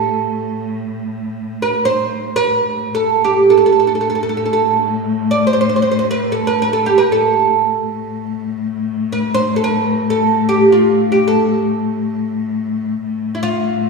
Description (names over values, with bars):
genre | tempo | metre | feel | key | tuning
Arabic maqam ensemble | free time | none | none | A maqam bayati | A4 = 441 Hz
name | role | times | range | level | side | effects
oud | melody | 0.0-13.9 s | E4 to D5 | -14 LUFS | right 4 dB | none
rich cello | drone | 0.0-13.9 s | A2 | -20 LUFS | left 4 dB | none
room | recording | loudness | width
wet scoring stage reverb, RT60 1.6 s | heard from further back in the room | -14 LUFS | side -3 dB against mid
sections
0.0-13.9 A section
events
none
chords
none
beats
free time